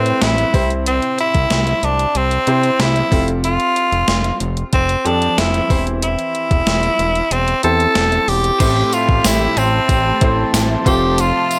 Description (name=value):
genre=1980s-style pop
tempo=93 BPM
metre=4/4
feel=straight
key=A minor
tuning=A4 = 440 Hz
part: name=raspy tenor saxophone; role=melody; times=0.0-11.6 s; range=C4 to A4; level=-19 LUFS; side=equal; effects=none
part: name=clear baby grand piano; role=accompaniment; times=0.0-11.6 s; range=A2 to E5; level=-25 LUFS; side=equal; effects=none
part: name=fat analog bass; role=bass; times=0.0-11.3 s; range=E1 to C3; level=-22 LUFS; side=equal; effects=none
part: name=gated 80s digital drum machine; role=drums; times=0.1-11.6 s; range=crash cymbal, hi-hat, kick drum, snare drum, tambourine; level=-21 LUFS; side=equal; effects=gated reverb, gated reverb snare, overdrive
part: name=overdriven electric guitar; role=accompaniment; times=8.6-11.6 s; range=F2 to A3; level=-30 LUFS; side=equal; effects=none
part: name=chorused pulse-width pad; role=sustained chords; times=8.6-11.6 s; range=F3 to C6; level=-28 LUFS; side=equal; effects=phaser
part: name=tambourine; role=percussion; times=8.6-11.6 s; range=none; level=-32 LUFS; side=equal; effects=none
room=moderate studio reverb, RT60 0.5 s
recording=none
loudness=-16 LUFS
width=mono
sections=0.0-8.6 A section; 8.6-11.6 B section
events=none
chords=0.0 Amadd9; 0.5 C; 3.1 Fadd9; 5.7 C/E; 8.6 Am7; 10.9 Fmaj7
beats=0.22 | 0.86 1.51 2.15 2.80 | 3.44 4.09 4.73 5.38 | 6.02 6.67 7.31 7.96 | 8.60 9.25 9.89 10.54 | 11.18